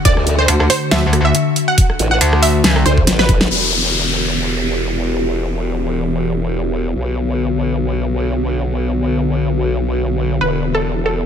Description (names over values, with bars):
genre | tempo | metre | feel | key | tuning
heavy wobble dubstep | 139 BPM | 4/4 | swing 55% on 16ths, half-time | E minor | A4 = 441 Hz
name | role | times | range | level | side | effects
evolving wavetable pad | sustained chords | 0.0-11.3 s | D3 to G4 | -20 LUFS | left 2 dB | phaser, built-in reverb, sidechain pumping
wide unison pluck | melody | 0.1-3.4, 10.4-11.2 s | A4 to F#5 | -19 LUFS | right 2 dB | vintage 12-bit sampler grit, digital delay
formant-sweep wobble bass | bass | 0.1-11.3 s | E1 to D2 | -19 LUFS | equal | chorus, overdrive
dubstep drum kit | drums | 0.1-3.6 s | crash cymbal, hi-hat, rim click, snare drum | -18 LUFS | equal | low-pass filter on hats, small room ambience, low-pass filter on snare, low-pass filter on cymbals
electronic kick drum | drums | 0.1-3.4 s | none | -14 LUFS | equal | small room ambience
metallic wobble bass | bass | 0.5-2.8 s | D2 | -14 LUFS | equal | distortion, chorus, overdrive
downlifter | sound effects | 3.5-7.0 s | none | -21 LUFS | left 3 dB | none
room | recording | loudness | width
light reverb | none | -14 LUFS | side -8 dB against mid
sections
0.0-3.5 A section; 3.5-11.3 B section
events
drop 0.0-3.5; drum fill 3.1-3.5; band accent 3.4; filter sweep on ambient pad 3.5-11.3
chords
0.0 D; 3.5 Em; 7.0 Bm; 10.4 Em